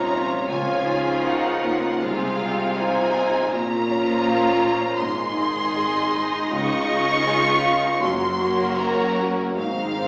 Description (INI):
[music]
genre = cinematic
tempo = 79 BPM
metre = 4/4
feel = rubato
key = unclear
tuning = A4 = 441 Hz
[part]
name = rich studio violin section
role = melody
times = 0.0-10.1 s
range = F5 to Db6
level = -28 LUFS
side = equal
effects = none
[part]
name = rich studio violin section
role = second line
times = 0.0-10.1 s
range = Db4 to Eb5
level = -28 LUFS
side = equal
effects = none
[part]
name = rich studio viola section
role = accompaniment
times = 0.0-10.1 s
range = F3 to F4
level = -30 LUFS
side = equal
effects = none
[part]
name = warm grand piano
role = accompaniment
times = 0.0-10.1 s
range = C2 to Db5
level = -29 LUFS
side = equal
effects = none
[part]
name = concert harp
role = arpeggios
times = 0.0-10.1 s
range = Gb2 to Bb5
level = -34 LUFS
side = equal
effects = none
[part]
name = rich studio cello section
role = bass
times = 0.0-10.1 s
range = Gb2 to Db3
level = -33 LUFS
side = equal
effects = none
[part]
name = rich studio double bass section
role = bass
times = 0.0-10.1 s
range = Gb1 to Db2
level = -37 LUFS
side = equal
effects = none
[sound]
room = wet recital hall reverb, RT60 1.3 s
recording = recorded in a church or concert hall, small speaker sound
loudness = -22 LUFS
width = mono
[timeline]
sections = 0.0-10.1 A section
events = none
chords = 0.5 Dbadd9; 2.0 Fm/C; 3.5 Bbm; 5.0 Ab; 6.5 Dbadd9; 8.0 Gb; 9.6 Ab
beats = | 0.50 1.26 2.03 2.78 | 3.52 4.27 5.01 5.76 | 6.51 7.27 8.03 8.80 | 9.58